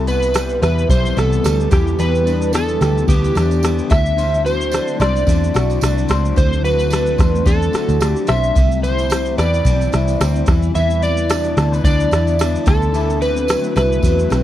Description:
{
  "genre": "indie pop, bedroom pop",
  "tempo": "110 BPM",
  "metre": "4/4",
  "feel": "swing 55% on 16ths",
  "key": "unclear",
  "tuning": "A4 = 440 Hz",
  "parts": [
    { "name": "electric slide guitar", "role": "melody", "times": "0.0-14.4 s", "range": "G4 to E5", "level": "-20 LUFS", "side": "right 1 dB", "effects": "analog chorus, tape echo" },
    { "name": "electric guitar through a small old amp", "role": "accompaniment", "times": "0.0-14.4 s", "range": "C3 to C5", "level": "-23 LUFS", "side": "left 7 dB", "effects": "analog chorus, warbly pitch drift" },
    { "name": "granular cloud pad", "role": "sustained chords", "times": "0.3-14.4 s", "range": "C3 to E4", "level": "-26 LUFS", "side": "equal", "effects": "built-in reverb" },
    { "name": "vintage muted picked electric bass", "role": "bass", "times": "0.0-14.4 s", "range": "B1 to E2", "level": "-18 LUFS", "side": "equal", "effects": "none" },
    { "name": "soft vintage rhythm box", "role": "drums", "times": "0.1-14.4 s", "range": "kick drum, ride cymbal, rim click, shaker", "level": "-18 LUFS", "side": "equal", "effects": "none" },
    { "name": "tambourine", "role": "percussion", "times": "0.1-14.4 s", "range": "none", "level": "-36 LUFS", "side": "right 10 dB", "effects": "none" }
  ],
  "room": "little or no reverb",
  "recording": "dry, close 1970s-style studio recording",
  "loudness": "-14 LUFS",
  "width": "side -12 dB against mid",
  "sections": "0.0-14.4 A section",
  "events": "none",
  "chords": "0.0 Cmaj7; 1.7 Em7; 3.9 D9; 8.6 Cmaj7; 10.5 Em7; 12.7 D9"
}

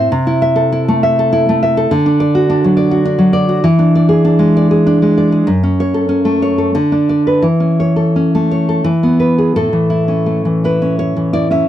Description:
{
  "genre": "romantic piece for solo classical guitar",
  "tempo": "83-103 BPM",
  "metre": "3/4",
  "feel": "rubato",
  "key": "A major",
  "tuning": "A4 = 441 Hz",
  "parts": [
    { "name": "nylon-string guitar", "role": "solo", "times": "0.0-11.7 s", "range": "F#2 to E5", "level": "-10 LUFS", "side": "equal", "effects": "none" }
  ],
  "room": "light reverb",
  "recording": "dry, close 1970s-style studio recording",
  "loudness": "-10 LUFS",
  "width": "side -11 dB against mid",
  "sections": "0.0-9.6 A section; 9.6-11.7 B section",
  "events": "none",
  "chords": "0.1 Am/C; 1.9 D; 3.7 E7; 5.5 F#m; 6.8 Bm/D; 7.5 A/E; 8.9 E; 9.6 A"
}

